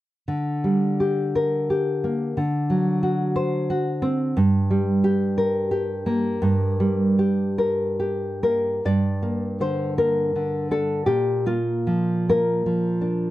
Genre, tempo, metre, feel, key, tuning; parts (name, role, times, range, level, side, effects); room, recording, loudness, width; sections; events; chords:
romantic piece for solo classical guitar; 45-61 BPM (dotted quarters); 6/8; rubato; G minor; A4 = 440 Hz
nylon-string guitar; solo; 0.3-13.3 s; G2 to D5; -20 LUFS; equal
light reverb; -20 LUFS; side -15 dB against mid
0.3-8.8 A section; 8.8-13.3 B section
0.3 Gm/D; 2.4 D7; 4.4 Gm; 11.1 Bb